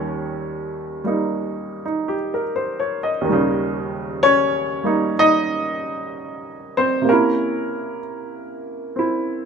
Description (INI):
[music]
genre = solo jazz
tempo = 63 BPM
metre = 4/4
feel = swing 68% on 8ths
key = Eb mixolydian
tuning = A4 = 440 Hz
[part]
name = clear baby grand piano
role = solo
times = 0.0-9.5 s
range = Eb2 to Eb5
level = -19 LUFS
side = right 1 dB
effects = none
[sound]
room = light reverb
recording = minimal, uncompressed stereo recording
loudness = -18 LUFS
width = side -6 dB against mid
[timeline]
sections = 0.0-9.5 A section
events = none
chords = 0.0 Eb7; 7.1 C7b9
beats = 0.42 1.37 2.32 | 3.27 4.22 5.17 6.12 | 7.07 8.03 8.98